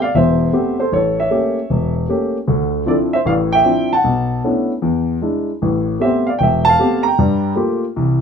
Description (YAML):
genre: solo jazz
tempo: 154 BPM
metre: 4/4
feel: swing 65% on 8ths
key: unclear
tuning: A4 = 440 Hz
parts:
  - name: dark baby grand piano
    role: solo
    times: 0.0-8.2 s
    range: E1 to Bb5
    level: -14 LUFS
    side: equal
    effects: none
room: moderate club reverb, RT60 0.5 s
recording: minimal, uncompressed stereo recording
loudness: -14 LUFS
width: side -6 dB against mid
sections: 0.0-8.2 A section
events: none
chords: 0.0 Am9; 0.9 A7b9; 2.5 Dm9; 4.1 Bm11; 4.8 E7; 5.6 Am9; 7.2 Gm9